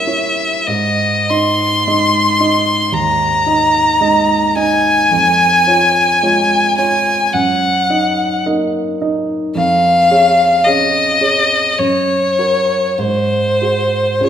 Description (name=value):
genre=classical, romantic duo for violin and grand piano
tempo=46-57 BPM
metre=4/4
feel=rubato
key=Db major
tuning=A4 = 439 Hz
part: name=rich violin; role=melody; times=0.0-14.3 s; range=C5 to C6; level=-12 LUFS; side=left 1 dB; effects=none
part: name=warm grand piano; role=accompaniment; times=0.0-14.3 s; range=Db2 to Eb5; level=-17 LUFS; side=right 2 dB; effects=none
room=wet recital hall reverb, RT60 1.5 s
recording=minimal, uncompressed stereo recording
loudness=-11 LUFS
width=side -9 dB against mid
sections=0.0-14.3 A section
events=none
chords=0.0 Gdim7; 0.7 Ab; 5.1 Db/F; 7.3 Ebm/Gb; 9.6 Db/F; 11.8 Gb; 13.0 Ab7